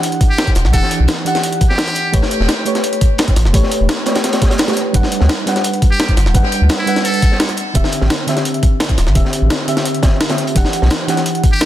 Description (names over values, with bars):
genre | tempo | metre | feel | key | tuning
liquid drum and bass | 171 BPM | 4/4 | straight | G major | A4 = 442 Hz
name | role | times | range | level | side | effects
mellow FM electric piano | accompaniment | 0.0-11.7 s | D3 to F#5 | -19 LUFS | equal | chorus, tremolo, digital delay
breakbeat sampler-style drum kit | drums | 0.0-11.7 s | hi-hat, snare drum | -20 LUFS | equal | none
crunchy breakbeat drum kit | drums | 0.0-11.7 s | hi-hat, snare drum | -23 LUFS | equal | high-pass filter on hats, high-pass filter on snare, high-pass filter on room
electronic kick drum | drums | 0.2-11.5 s | none | -13 LUFS | equal | none
trumpet with metal mute | melody | 0.3-2.2, 5.9-7.4, 11.5-11.7 s | E4 to A4 | -21 LUFS | equal | digital delay
warm sub bass | bass | 0.6-10.9 s | D1 to D2 | -13 LUFS | equal | none
room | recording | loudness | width
light reverb, studio reverb | dense, heavily limited modern master | -12 LUFS | side -12 dB against mid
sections
0.0-11.7 A section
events
none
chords
0.0 Em9; 2.1 A9; 4.9 Gmaj7; 7.6 D9sus4; 10.6 Em9